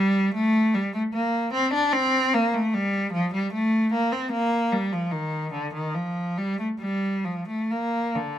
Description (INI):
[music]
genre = classical, baroque-style suite movement for unaccompanied cello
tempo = 65-77 BPM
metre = 3/4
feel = rubato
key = Bb major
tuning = A4 = 440 Hz
[part]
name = rich cello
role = solo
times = 0.0-8.4 s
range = D3 to D4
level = -22 LUFS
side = equal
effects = none
[sound]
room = light reverb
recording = close, detailed microphones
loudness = -22 LUFS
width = side -11 dB against mid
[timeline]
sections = 0.0-8.4 A section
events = none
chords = none